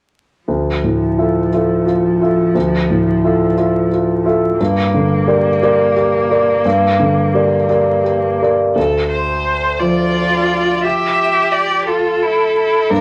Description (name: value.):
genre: neoclassical piano and strings.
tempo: 58 BPM (dotted quarters).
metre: 6/8.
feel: rubato.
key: D minor.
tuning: A4 = 440 Hz.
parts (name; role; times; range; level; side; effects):
warm cello; second line; 0.5-13.0 s; F3 to G4; -22 LUFS; equal; none.
warm concert grand piano; accompaniment; 0.5-13.0 s; D2 to E5; -16 LUFS; equal; none.
rich violin; melody; 8.8-13.0 s; A4 to E5; -19 LUFS; equal; none.
room: moderate studio reverb, RT60 0.6 s.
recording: vinyl crackle.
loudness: -15 LUFS.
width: mono.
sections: 0.5-8.8 A section; 8.8-13.0 B section.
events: none.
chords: 0.5 Dmadd9; 4.6 Gm; 8.8 Dmadd9.